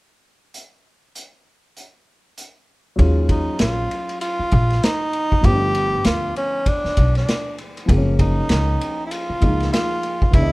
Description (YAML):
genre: hip hop, jazz-hop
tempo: 98 BPM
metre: 4/4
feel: swing 59% on 16ths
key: Eb minor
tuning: A4 = 438 Hz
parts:
  - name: vintage drum kit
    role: drums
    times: 0.5-10.5 s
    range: hi-hat, kick drum, ride cymbal, snare drum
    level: -21 LUFS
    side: equal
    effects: none
  - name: dark concert grand piano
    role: accompaniment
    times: 3.0-10.5 s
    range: D3 to Eb5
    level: -27 LUFS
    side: left 1 dB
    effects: none
  - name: upright bass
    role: bass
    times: 3.0-10.5 s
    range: Gb1 to Eb2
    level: -19 LUFS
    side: equal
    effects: none
  - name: breathy tenor saxophone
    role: melody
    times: 3.3-10.5 s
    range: Db4 to G4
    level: -23 LUFS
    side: equal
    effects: none
room: small room ambience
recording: rough home demo mix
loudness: -17 LUFS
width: side -22 dB against mid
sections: 0.5-3.0 A section; 3.0-10.5 B section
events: none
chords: 0.5 N.C.; 3.0 Ebm11; 5.4 G9; 7.9 Gbmaj9